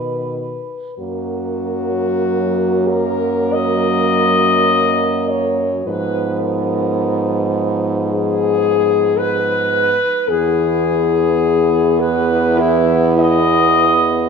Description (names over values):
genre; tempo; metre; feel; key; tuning
classical, lyrical piece for horn quartet; 43-55 BPM; 4/4; rubato; F# major; A4 = 441 Hz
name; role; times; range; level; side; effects
warm French horn; second line; 0.0-14.3 s; A#3 to B4; -22 LUFS; right 6 dB; none
mellow French horn; accompaniment; 0.0-14.3 s; D#3 to F#3; -22 LUFS; equal; none
warm French horn; bass; 0.0-14.3 s; E2 to B2; -21 LUFS; right 4 dB; none
mellow French horn; melody; 1.0-14.3 s; E4 to D#5; -16 LUFS; left 5 dB; none
room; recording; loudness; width
wet scoring stage reverb, RT60 1.9 s; minimal, uncompressed stereo recording; -14 LUFS; side -6 dB against mid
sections
1.0-14.3 A section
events
none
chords
0.0 B; 1.0 F#; 5.9 Fdim/Ab; 10.3 E